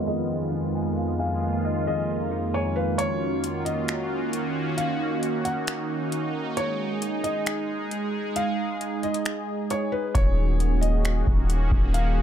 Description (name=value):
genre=hip hop, atmospheric cloud-rap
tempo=134 BPM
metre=4/4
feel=half-time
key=Eb minor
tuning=A4 = 439 Hz
part: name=felt-muted upright piano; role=melody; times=0.0-12.2 s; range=Cb5 to Gb5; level=-31 LUFS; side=left 2 dB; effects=ping-pong delay
part: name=sweeping resonant pad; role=sustained chords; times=0.0-12.2 s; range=F2 to Ab4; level=-26 LUFS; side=right 1 dB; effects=chorus, sidechain pumping
part: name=mellow electric guitar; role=arpeggios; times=0.0-3.0 s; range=Eb4 to Ab5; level=-35 LUFS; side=equal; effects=vibrato effect, ping-pong delay
part: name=booming analog drum machine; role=drums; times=3.0-12.0 s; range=finger snaps, hi-hat, kick drum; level=-26 LUFS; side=equal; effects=none
part: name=long sustained 808-style bass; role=bass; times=10.2-12.2 s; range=Eb1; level=-22 LUFS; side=equal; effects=none
room=digital ambience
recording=dark, warm production, low-pass filter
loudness=-23 LUFS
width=side -10 dB against mid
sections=0.0-3.0 A section; 3.0-12.2 B section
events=filter sweep 0.0-3.0; kick muted 3.0-10.2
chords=0.0 Fm7b5; 3.0 Ebm9; 6.6 Absus4; 10.2 Ebm7